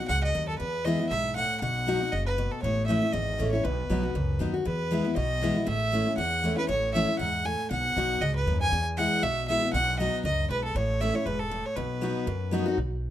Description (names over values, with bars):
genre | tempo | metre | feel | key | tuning
bluegrass | 236 BPM | 4/4 | swing 56% on 8ths | B mixolydian | A4 = 440 Hz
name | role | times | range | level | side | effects
warm fiddle | melody | 0.0-12.5 s | A4 to G#5 | -29 LUFS | right 1 dB | none
picked steel-string acoustic guitar | accompaniment | 0.0-12.8 s | E2 to F#4 | -29 LUFS | left 2 dB | none
upright bass | bass | 0.1-13.1 s | E1 to F#2 | -31 LUFS | equal | none
room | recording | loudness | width
light reverb | close, detailed microphones | -25 LUFS | side -12 dB against mid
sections
0.0-4.7 A section; 4.7-12.8 A section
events
none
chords
0.0 B (rootless); 0.6 E; 1.6 B; 2.6 A; 3.6 B; 4.7 E; 5.7 A; 7.7 B; 8.7 E; 9.7 B; 10.8 A; 11.8 B